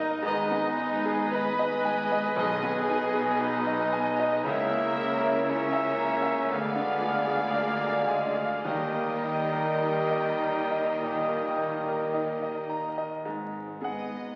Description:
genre	classical, romantic movement for piano and orchestra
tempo	51-60 BPM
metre	4/4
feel	rubato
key	G# minor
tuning	A4 = 440 Hz
part	clear concert grand piano	melody	0.0-14.4 s	B1 to A#5	-33 LUFS	equal	none
part	clear studio violin section	melody	0.0-14.4 s	D#5 to F5	-43 LUFS	equal	none
part	rich studio violin section	second line	0.0-14.4 s	B3 to B5	-46 LUFS	equal	none
part	clear bassoon	accompaniment	0.0-12.7 s	G3 to B4	-34 LUFS	equal	none
part	rich studio viola section	accompaniment	0.0-13.1 s	G#4 to D5	-41 LUFS	equal	none
part	rich studio cello section	bass	0.0-14.3 s	G2 to D#3	-41 LUFS	equal	none
part	rich studio double bass section	bass	0.0-14.3 s	G1 to D#2	-43 LUFS	equal	none
part	mellow cor anglais	second line	0.2-12.9 s	D#5 to F5	-40 LUFS	equal	none
part	warm clarinet	second line	0.2-12.9 s	B4 to D#5	-39 LUFS	equal	none
part	mellow flute section	second line	0.3-12.9 s	G#5 to A#5	-42 LUFS	equal	none
part	clear trombone section	sustained chords	0.3-12.9 s	C#3 to B3	-44 LUFS	equal	none
part	warm French horn section	sustained chords	0.3-14.4 s	G#3 to F5	-38 LUFS	equal	none
part	clear trumpet	stabs	0.3-12.9 s	D#5 to G5	-38 LUFS	equal	none
part	timpani	percussion	8.7-10.4 s	D#3	-48 LUFS	equal	none
room	wet scoring stage reverb, RT60 1.9 s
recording	very old 78 rpm record, vinyl crackle, nothing above 11.0 kHz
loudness	-28 LUFS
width	mono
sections	0.0-13.3 A section; 13.3-14.4 B section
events	none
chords	0.3 G#m; 2.4 G#m/B; 4.5 A#dim/C#; 6.5 Ddim7; 8.7 D#; 13.3 G#m

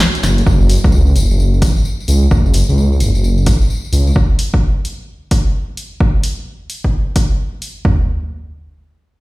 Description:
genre	UK garage, two-step garage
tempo	130 BPM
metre	4/4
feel	swing 64% on 16ths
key	unclear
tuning	A4 = 440 Hz
part	punchy analog drum machine	drums	0.0-7.7 s	hi-hat, snare drum	-21 LUFS	equal	none
part	tambourine	percussion	0.0-4.1 s	none	-28 LUFS	left 3 dB	none
part	dark detuned saw bass	bass	0.2-4.1 s	F#1 to C#2	-12 LUFS	equal	none
part	punchy analog drum machine	drums	0.5-8.0 s	kick drum, toms	-14 LUFS	equal	none
room	digital ambience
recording	played on a big sound system in a bare room, stone room reverb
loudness	-12 LUFS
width	side -20 dB against mid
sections	0.0-7.8 A section; 7.8-9.2 B section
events	none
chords	none

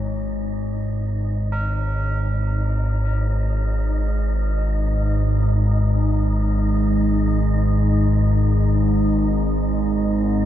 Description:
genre	dark ambient drone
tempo	free time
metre	none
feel	none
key	unclear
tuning	A4 = 436 Hz
part	tubular bells	arpeggios	0.0-10.5 s	C#4 to A#4	-35 LUFS	right 2 dB	ping-pong delay
part	analog drone	drone	0.0-10.5 s	G#1 to G#2	-18 LUFS	equal	chorus
part	wind-like tuned noise texture	texture	0.0-10.5 s	D#4 to D#5	-31 LUFS	equal	built-in reverb
room	light reverb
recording	dark, warm production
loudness	-18 LUFS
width	side -11 dB against mid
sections	0.0-10.5 A section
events	fade-in on synth texture 0.0-10.5; fade-in on tubular bells 0.0-10.5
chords	0.0 G#5

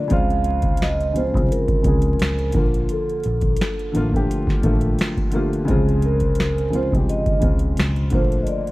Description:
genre	lo-fi hip hop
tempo	86 BPM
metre	4/4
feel	swing 56% on 16ths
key	unclear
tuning	A4 = 439 Hz
part	vibraphone with soft mallets	melody	0.0-8.7 s	G4 to F5	-25 LUFS	right 2 dB	auto-pan, analog delay
part	dark upright piano	accompaniment	0.0-8.7 s	Db3 to Ab4	-23 LUFS	left 1 dB	cassette tape
part	vintage muted fingered electric bass	bass	0.1-8.4 s	A1 to Db2	-23 LUFS	equal	none
part	booming analog drum machine	drums	0.1-8.7 s	hi-hat, kick drum, snare drum	-22 LUFS	equal	none
room	small room ambience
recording	vinyl crackle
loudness	-17 LUFS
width	side -19 dB against mid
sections	0.0-8.7 A section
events	none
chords	0.1 Dbmaj7; 2.5 Bbmaj7; 5.7 Dbmaj7; 8.1 Bbmaj7

